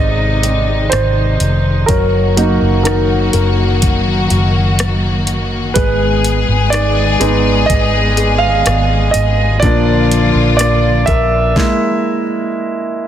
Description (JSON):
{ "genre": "pop ballad", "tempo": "62 BPM", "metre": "4/4", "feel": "straight", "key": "Eb harmonic minor", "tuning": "A4 = 440 Hz", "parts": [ { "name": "warm grand piano", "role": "accompaniment", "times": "0.0-13.1 s", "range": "F3 to F5", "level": "-16 LUFS", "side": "right 3 dB", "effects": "none" }, { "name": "warm studio string section", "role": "sustained chords", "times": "0.0-11.5 s", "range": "C3 to Ab4", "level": "-18 LUFS", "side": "left 2 dB", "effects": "none" }, { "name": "flamenco guitar", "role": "arpeggios", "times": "0.0-11.7 s", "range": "Bb2 to C5", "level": "-22 LUFS", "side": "left 8 dB", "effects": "none" }, { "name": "vintage muted fingered electric bass", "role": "bass", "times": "0.0-11.5 s", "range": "F1 to Bb1", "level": "-15 LUFS", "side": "equal", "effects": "none" }, { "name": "smooth R&B drum kit", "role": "drums", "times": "0.4-11.8 s", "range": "hi-hat, kick drum, rim click, snare drum", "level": "-18 LUFS", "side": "equal", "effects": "soft clipping on snare" } ], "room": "light reverb, small room reverb", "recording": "dense, heavily limited modern master", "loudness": "-11 LUFS", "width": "side -10 dB against mid", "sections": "0.0-13.1 A section", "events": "grand piano solo 0.0-13.1; stop 11.6-13.1", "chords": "0.0 Ab; 1.9 Ebm/Gb; 5.8 Abm; 9.6 Bb; 11.6 E", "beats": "0.92 | 1.89 2.86 3.83 4.79 | 5.76 6.73 7.70 8.66 | 9.63 10.60 11.57 12.53" }